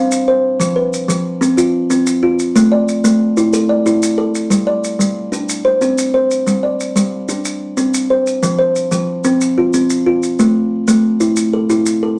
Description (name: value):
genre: southern african traditional, mbira-style interlocking cycle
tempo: 123 BPM (dotted quarters)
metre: 12/8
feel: straight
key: unclear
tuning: A4 = 441 Hz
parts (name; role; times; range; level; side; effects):
- kalimba; arpeggios; 0.0-12.2 s; F3 to F5; -15 LUFS; equal; none
- maracas; percussion; 0.1-12.0 s; none; -27 LUFS; equal; none
room: wet studio reverb, RT60 0.6 s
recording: none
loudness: -15 LUFS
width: mono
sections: 0.0-4.5 A section; 4.5-12.2 A section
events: none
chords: 0.0 Csus4; 0.6 F5; 2.6 A5; 4.5 G5; 5.5 N.C.; 6.5 G5; 7.4 N.C.; 8.4 F5; 10.4 A5